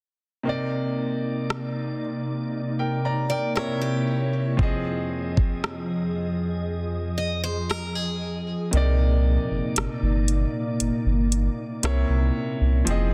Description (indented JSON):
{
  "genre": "contemporary R&B",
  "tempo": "58 BPM",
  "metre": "4/4",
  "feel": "straight",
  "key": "C minor",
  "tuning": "A4 = 439 Hz",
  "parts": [
    { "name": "clear grand piano", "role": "accompaniment", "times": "0.4-13.1 s", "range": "C3 to Bb5", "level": "-32 LUFS", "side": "equal", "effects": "none" },
    { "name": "glassy FM pad", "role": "sustained chords", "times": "0.5-13.1 s", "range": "F2 to Eb5", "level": "-30 LUFS", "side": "equal", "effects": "ensemble chorus, built-in reverb" },
    { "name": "smooth R&B drum kit", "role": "drums", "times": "1.5-13.1 s", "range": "hi-hat, kick drum, rim click", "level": "-26 LUFS", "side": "equal", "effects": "none" },
    { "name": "picked acoustic archtop guitar", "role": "arpeggios", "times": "3.3-8.7 s", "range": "G4 to Eb5", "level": "-33 LUFS", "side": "equal", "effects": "tape echo" },
    { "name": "warm sub bass", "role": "bass", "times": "8.7-13.1 s", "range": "F1 to C2", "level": "-24 LUFS", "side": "equal", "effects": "none" }
  ],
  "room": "little or no reverb",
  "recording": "dense, heavily limited modern master",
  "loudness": "-25 LUFS",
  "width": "mono",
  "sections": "0.5-8.7 A section; 8.7-13.1 B section",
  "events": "kick muted 6.7-8.7, 8.7-13.1",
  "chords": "0.5 Cm9; 3.6 C7b9; 4.6 Fm7; 8.7 Cm9; 11.8 C7b9"
}